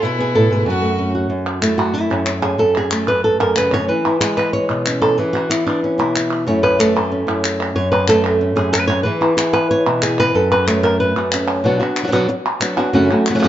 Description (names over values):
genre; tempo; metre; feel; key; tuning
flamenco; 186 BPM; 4/4; straight; F# minor; A4 = 440 Hz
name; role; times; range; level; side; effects
flamenco guitar; melody; 0.0-13.5 s; F#2 to C#5; -15 LUFS; equal; none
bright violin; second line; 0.0-1.1 s; E4 to F#4; -24 LUFS; left 2 dB; none
palmas hand claps; percussion; 1.5-13.5 s; none; -22 LUFS; equal; none
room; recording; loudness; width
moderate stone room reverb, RT60 1.2 s; dark, warm production, nothing above 7.7 kHz; -14 LUFS; side -12 dB against mid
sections
0.0-1.3 A section; 1.3-11.6 B section; 11.6-13.5 C section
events
nylon-string guitar solo 1.3-11.6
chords
0.0 Eadd11; 0.7 F#m; 1.3 F#m7; 3.9 E6; 6.5 F#m7; 9.1 E; 10.3 F#m; 11.6 Bm; 12.9 F#m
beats
| 0.01 0.34 0.66 0.98 | 1.30 1.63 1.95 2.27 | 2.60 2.92 3.24 3.56 | 3.89 4.21 4.53 4.86 | 5.18 5.50 5.83 6.15 | 6.47 6.79 7.12 7.44 | 7.76 8.09 8.41 8.73 | 9.06 9.38 9.70 10.03 | 10.35 10.67 11.00 11.32 | 11.64 11.97 12.29 12.62 | 12.94 13.27